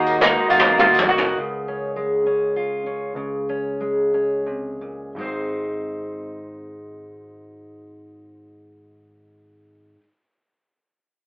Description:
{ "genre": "indie folk with a building arrangement", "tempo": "83-104 BPM", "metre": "3/4", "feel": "straight", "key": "Ab major", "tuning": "A4 = 441 Hz", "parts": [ { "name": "bluegrass banjo", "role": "melody", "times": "0.0-0.8 s", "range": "Gb4", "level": "-28 LUFS", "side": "equal", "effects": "none" }, { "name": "warm cello", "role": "second line", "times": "0.0-1.1 s", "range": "Ab3 to Bb3", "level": "-27 LUFS", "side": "equal", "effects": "none" }, { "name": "picked steel-string acoustic guitar", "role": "accompaniment", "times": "0.0-1.4 s", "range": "Eb3 to Gb4", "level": "-22 LUFS", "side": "equal", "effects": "none" }, { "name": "glass harmonica", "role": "sustained chords", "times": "0.0-1.3 s", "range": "Bb4 to Eb6", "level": "-29 LUFS", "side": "equal", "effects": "none" }, { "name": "picked electric bass", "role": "bass", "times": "0.0-9.9 s", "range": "Ab1 to F2", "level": "-38 LUFS", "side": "equal", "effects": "none" }, { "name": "tambourine", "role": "percussion", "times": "0.1-1.3 s", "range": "none", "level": "-40 LUFS", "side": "left 1 dB", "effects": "none" }, { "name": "mandolin", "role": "arpeggios", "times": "0.2-1.4 s", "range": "Eb4 to Gb4", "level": "-17 LUFS", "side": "right 1 dB", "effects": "none" }, { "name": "soft brush drum kit", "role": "drums", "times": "0.2-1.3 s", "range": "snare drum, toms", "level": "-19 LUFS", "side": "equal", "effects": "none" }, { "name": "fingerpicked steel-string acoustic guitar", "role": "accompaniment", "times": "1.4-10.1 s", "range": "Ab2 to C5", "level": "-24 LUFS", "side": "equal", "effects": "none" } ], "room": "moderate studio reverb, RT60 0.6 s", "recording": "rough rehearsal-room recording, warm saturation, telephone sound", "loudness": "-19 LUFS", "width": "side -28 dB against mid", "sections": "0.0-1.4 A section; 1.4-5.2 B section; 5.2-9.5 C section", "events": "drum fill 0.2-1.4; slowing down 1.4-5.2", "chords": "0.0 Ebm; 1.4 Db; 5.2 Ab" }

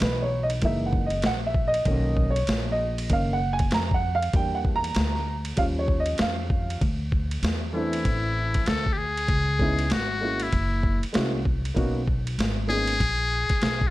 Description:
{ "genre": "hip hop, jazz-hop", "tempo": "97 BPM", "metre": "4/4", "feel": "swing 61% on 16ths", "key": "unclear", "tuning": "A4 = 440 Hz", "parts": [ { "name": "dark upright piano", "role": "accompaniment", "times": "0.0-12.9 s", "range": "D#3 to A#5", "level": "-27 LUFS", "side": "right 1 dB", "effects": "plate reverb" }, { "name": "upright bass", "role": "bass", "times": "0.0-13.9 s", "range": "F#1 to F2", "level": "-28 LUFS", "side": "equal", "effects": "none" }, { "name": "boom bap sampler-style drum kit", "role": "drums", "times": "0.0-13.9 s", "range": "hi-hat, kick drum, ride cymbal, snare drum", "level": "-27 LUFS", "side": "equal", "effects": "none" }, { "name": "trumpet with metal mute", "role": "melody", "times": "7.7-13.9 s", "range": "E4 to A4", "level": "-27 LUFS", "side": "left 3 dB", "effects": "none" } ], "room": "light reverb", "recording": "dark, warm production", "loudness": "-22 LUFS", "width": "side -17 dB against mid", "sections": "0.0-6.8 A section; 6.8-13.9 B section", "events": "upright piano solo 0.0-6.8", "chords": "0.0 C#m11; 0.6 F#13; 1.9 Bmaj9; 4.3 Em7b5; 5.6 Eb9; 6.8 Dsus2; 9.3 C#m9; 10.5 F#7; 11.8 Bmaj9" }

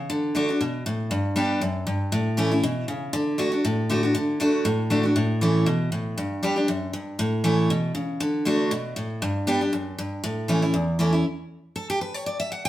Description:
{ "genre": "bluegrass", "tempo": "237 BPM", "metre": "4/4", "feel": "swing 54% on 8ths", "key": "unclear", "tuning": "A4 = 442 Hz", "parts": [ { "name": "picked steel-string acoustic guitar", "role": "solo", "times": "0.0-12.7 s", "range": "E2 to G5", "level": "-22 LUFS", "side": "equal", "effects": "none" } ], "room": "wet studio reverb, RT60 0.9 s", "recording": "band playing live in one room", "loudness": "-22 LUFS", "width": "side -14 dB against mid", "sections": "0.0-3.1 A section; 3.1-11.3 B section; 11.3-12.7 C section", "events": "steel-string acoustic guitar solo 11.3-12.7", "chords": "0.1 D; 1.1 G; 2.1 A; 3.1 D; 5.2 A; 6.2 G; 7.2 A; 8.2 D; 9.2 G; 10.2 A; 11.3 N.C." }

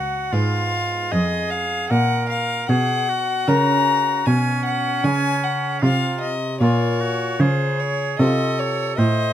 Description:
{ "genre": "classical, baroque-style sonata movement with continuo", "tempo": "76 BPM", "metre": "4/4", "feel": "straight", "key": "Bb minor from 5.0 s", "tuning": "A4 = 445 Hz", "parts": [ { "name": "rich violin", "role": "melody", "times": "0.0-9.3 s", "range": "C5 to Bb5", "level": "-23 LUFS", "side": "left 5 dB", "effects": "none" }, { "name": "clear oboe", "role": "second line", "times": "0.0-9.3 s", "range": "Db4 to C5", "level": "-26 LUFS", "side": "right 6 dB", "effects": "none" }, { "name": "lute", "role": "accompaniment", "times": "0.0-9.3 s", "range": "F2 to Cb5", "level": "-26 LUFS", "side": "equal", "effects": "none" }, { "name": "dark cello", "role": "bass", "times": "0.0-9.3 s", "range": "Db2 to Db3", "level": "-22 LUFS", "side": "right 1 dB", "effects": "none" } ], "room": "little or no reverb", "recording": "close, detailed microphones", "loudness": "-18 LUFS", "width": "side -11 dB against mid", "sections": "0.0-9.3 A section", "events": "none", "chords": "0.3 Fdim/Ab; 1.9 Gb/Bb; 5.0 Bbm; 8.2 F7/C" }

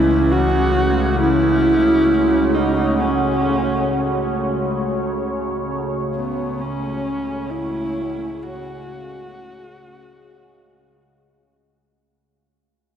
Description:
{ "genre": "dark ambient drone", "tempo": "free time", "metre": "none", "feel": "none", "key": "unclear", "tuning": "A4 = 440 Hz", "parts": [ { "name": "dark horsehead fiddle", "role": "melody", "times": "0.0-11.1 s", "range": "B3 to F#4", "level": "-20 LUFS", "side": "equal", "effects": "diffuse ambient delay" }, { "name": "deep dark ambient pad", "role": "sustained chords", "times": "0.0-12.1 s", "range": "C#3 to C#5", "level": "-22 LUFS", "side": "right 1 dB", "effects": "chorus, built-in reverb" }, { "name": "overtone-sweeping drone", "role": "drone", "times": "0.0-12.2 s", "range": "C#2 to C#3", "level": "-24 LUFS", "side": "equal", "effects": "chorus, built-in reverb, phaser" } ], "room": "wet huge ambient reverb, RT60 8.6 s", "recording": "dark, warm production", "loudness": "-17 LUFS", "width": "side -9 dB against mid", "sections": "0.0-12.1 A section", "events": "fade-out 2.4-12.1", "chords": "0.0 F#m/C#" }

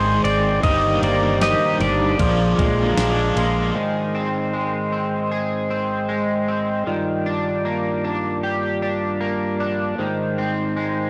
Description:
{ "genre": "dream pop", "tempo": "77 BPM", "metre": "4/4", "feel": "straight", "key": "unclear", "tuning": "A4 = 440 Hz", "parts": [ { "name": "pedal steel guitar", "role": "melody", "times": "0.0-2.9 s", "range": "C5 to Eb5", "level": "-24 LUFS", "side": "equal", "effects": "digital delay" }, { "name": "cranked stack guitar", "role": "accompaniment", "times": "0.0-4.3 s", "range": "G2 to Ab4", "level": "-27 LUFS", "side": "equal", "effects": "overdrive, tremolo, lush chorus" }, { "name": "mellow tonewheel organ", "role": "sustained chords", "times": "0.0-11.1 s", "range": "G2 to D6", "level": "-27 LUFS", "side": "equal", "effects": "slow rotary speaker" }, { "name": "electric guitar at the edge of break-up", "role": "arpeggios", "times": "0.0-11.1 s", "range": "Eb3 to Ab4", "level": "-26 LUFS", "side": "equal", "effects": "analog chorus, digital delay" }, { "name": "vintage muted fingered electric bass", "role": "bass", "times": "0.0-3.7 s", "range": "G1 to Bb1", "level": "-26 LUFS", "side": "equal", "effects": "transformer saturation" }, { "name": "crisp 8-bit digital drum machine", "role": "drums", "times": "0.2-3.5 s", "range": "kick drum, ride cymbal, snare drum, tambourine", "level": "-29 LUFS", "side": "equal", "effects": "none" } ], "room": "light reverb", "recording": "blown-out, overdriven recording, overdrive", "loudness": "-21 LUFS", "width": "mono", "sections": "0.0-3.8 A section; 3.8-11.1 B section", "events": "none", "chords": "0.0 Ab; 0.6 Ebmaj7/G; 2.2 Bb7; 3.8 Ab; 6.9 Ebmaj7/G; 10.0 Ab" }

